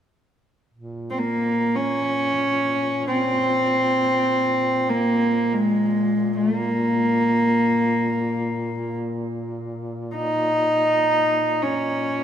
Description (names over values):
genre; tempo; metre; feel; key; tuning
caucasian folk, Caucasian lament; free time; none; none; Bb minor; A4 = 440 Hz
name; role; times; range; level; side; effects
dark duduk; drone; 0.7-12.2 s; Bb2; -31 LUFS; equal; none
warm cello; melody; 1.1-12.2 s; Ab3 to Eb4; -19 LUFS; equal; none
room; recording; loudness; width
wet church reverb, RT60 3.6 s; none; -19 LUFS; side -9 dB against mid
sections
0.7-12.2 A section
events
none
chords
none